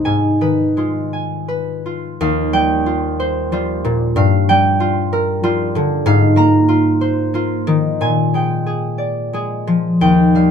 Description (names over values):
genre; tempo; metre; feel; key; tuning
classical, solo harp piece; 55-65 BPM (dotted quarters); 6/8; rubato; Eb major; A4 = 440 Hz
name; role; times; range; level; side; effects
concert harp; solo; 0.0-10.5 s; Eb2 to Bb5; -14 LUFS; equal; none
room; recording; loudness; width
light reverb; close, detailed microphones; -14 LUFS; side -7 dB against mid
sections
0.0-2.2 A section; 2.2-10.5 B section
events
none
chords
0.1 Abm6; 2.2 Eb69; 4.2 Gm7; 6.1 Ab69; 8.0 Bb13